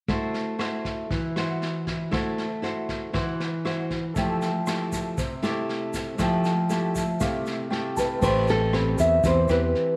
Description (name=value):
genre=bossa nova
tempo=118 BPM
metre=4/4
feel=straight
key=unclear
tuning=A4 = 440 Hz
part: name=nylon-string guitar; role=accompaniment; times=0.1-10.0 s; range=C3 to C5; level=-29 LUFS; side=equal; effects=none
part: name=vintage brush drum kit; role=drums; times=0.1-9.8 s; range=crash cymbal, kick drum, rim click, snare drum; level=-35 LUFS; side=equal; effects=none
part: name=clear concert grand piano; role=accompaniment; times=4.1-10.0 s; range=C4 to A5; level=-37 LUFS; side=equal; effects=none
part: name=egg shaker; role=percussion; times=4.2-9.7 s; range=none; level=-46 LUFS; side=equal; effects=none
part: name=nylon-string guitar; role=melody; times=8.0-10.0 s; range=A4 to E5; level=-25 LUFS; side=equal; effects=none
part: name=fingered electric bass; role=bass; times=8.2-9.7 s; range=A1 to E2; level=-27 LUFS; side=equal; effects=none
room=wet echo chamber reverb, RT60 1.4 s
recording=none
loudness=-26 LUFS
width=mono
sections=0.1-8.2 A section; 8.2-10.0 B section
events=grand piano fill 6.7-8.2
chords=0.1 Am6; 4.2 Fmaj9; 8.2 Am9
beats=| 0.09 0.60 1.10 1.61 | 2.12 2.63 3.14 3.65 | 4.16 4.67 5.17 5.68 | 6.19 6.70 7.21 7.72 | 8.22 8.73 9.24 9.75